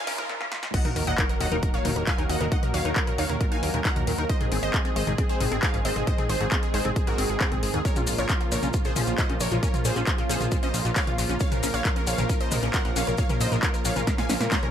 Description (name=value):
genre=uplifting trance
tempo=135 BPM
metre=4/4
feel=straight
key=Bb minor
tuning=A4 = 439 Hz
part: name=wide unison pluck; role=melody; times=0.0-14.7 s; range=C4 to Bb5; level=-30 LUFS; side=equal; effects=sidechain pumping, digital delay
part: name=riser and sub drop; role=sound effects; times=0.0-2.5 s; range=none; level=-36 LUFS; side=equal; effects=none
part: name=lush unison pad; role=sustained chords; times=0.1-14.7 s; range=Db3 to Ab4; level=-32 LUFS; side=right 1 dB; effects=chorus, sidechain pumping
part: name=liquid acid bass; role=arpeggios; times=0.1-14.7 s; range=Ab2 to Eb4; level=-34 LUFS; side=left 3 dB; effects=ensemble chorus, sidechain pumping, ping-pong delay
part: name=fat analog bass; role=bass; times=0.1-14.7 s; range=Ab1 to Bb2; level=-29 LUFS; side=equal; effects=sidechain pumping
part: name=electronic kick drum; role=drums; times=0.1-14.6 s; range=none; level=-26 LUFS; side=equal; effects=overdrive
part: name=punchy analog drum machine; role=drums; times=0.1-14.7 s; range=crash cymbal, handclaps, hi-hat, snare drum, toms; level=-30 LUFS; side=left 1 dB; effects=overdrive
part: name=maracas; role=percussion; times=7.9-14.6 s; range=none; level=-35 LUFS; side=left 4 dB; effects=none
room=little or no reverb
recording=high-pass filter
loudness=-22 LUFS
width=side -9 dB against mid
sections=0.7-14.7 A section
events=drum fill 0.0, 0.3-0.7, 14.1-14.7; riser 0.0; drop 0.7-14.7; impact 0.7-2.5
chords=0.0 Bbm; 0.7 Ebm; 4.3 Ab; 7.8 Bbm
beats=0.29 | 0.74 1.18 1.63 2.07 | 2.52 2.96 3.41 3.85 | 4.29 4.74 5.18 5.63 | 6.07 6.52 6.96 7.41 | 7.85 8.29 8.74 9.18 | 9.63 10.07 10.52 10.96 | 11.41 11.85 12.29 12.74 | 13.18 13.63 14.07 14.52